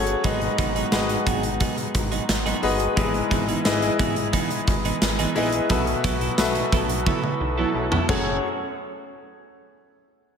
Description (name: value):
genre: 1980s-style pop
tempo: 88 BPM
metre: 4/4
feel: straight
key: unclear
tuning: A4 = 440 Hz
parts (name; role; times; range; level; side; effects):
- clear baby grand piano; accompaniment; 0.0-8.4 s; F#2 to E5; -25 LUFS; left 4 dB; slapback echo
- hand-pumped harmonium; sustained chords; 0.0-8.4 s; C#3 to D#5; -32 LUFS; right 2 dB; stereo widening
- twelve-string electric guitar; riff; 0.0-8.3 s; E3 to A4; -29 LUFS; right 6 dB; wide subtle chorus, tape echo, slapback echo
- chorused synth bass; bass; 0.0-8.4 s; F#1 to B1; -29 LUFS; equal; none
- gated 80s drum kit; drums; 0.1-8.2 s; crash cymbal, hi-hat, kick drum, snare drum, tambourine, toms; -24 LUFS; equal; none
- analog synth brass; stabs; 7.1-8.4 s; F#3 to A4; -31 LUFS; right 3 dB; chorus, tape echo, slapback echo
room: moderate lush hall reverb, RT60 2.5 s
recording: big arena sound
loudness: -20 LUFS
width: side -7 dB against mid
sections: 0.0-8.4 A section; 8.4-10.4 B section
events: band accent 5.7-8.4; drum fill 7.1-8.4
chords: 0.2 G#m7; 3.0 Emaj7/G#; 5.7 B7sus4; 8.1 F#madd9; 8.4 N.C.